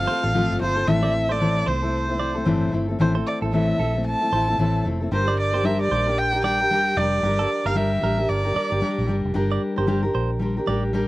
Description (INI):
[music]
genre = acoustic pop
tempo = 113 BPM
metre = 4/4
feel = swing 60% on 16ths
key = unclear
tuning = A4 = 440 Hz
[part]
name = rich erhu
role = melody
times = 0.0-9.1 s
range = C5 to A5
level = -23 LUFS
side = right 1 dB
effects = none
[part]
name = fingerpicked steel-string acoustic guitar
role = accompaniment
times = 0.0-11.1 s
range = A2 to Bb4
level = -24 LUFS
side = left 2 dB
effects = none
[part]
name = vintage muted fingered electric bass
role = bass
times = 0.0-11.1 s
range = F1 to C2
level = -26 LUFS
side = right 1 dB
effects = none
[part]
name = direct-recorded clean electric guitar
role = arpeggios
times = 0.1-10.8 s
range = A4 to D5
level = -31 LUFS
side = right 6 dB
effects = slapback echo
[sound]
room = little or no reverb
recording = recorded outdoors, with no room sound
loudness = -20 LUFS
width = side -18 dB against mid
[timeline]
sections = 0.9-9.4 A section; 9.4-11.1 B section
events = none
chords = 0.0 F; 0.9 Am; 5.1 Gm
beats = 0.34 | 0.87 1.40 1.93 2.46 | 2.99 3.52 4.05 4.58 | 5.11 5.64 6.17 6.70 | 7.23 7.76 8.29 8.82 | 9.35 9.88 10.41 10.94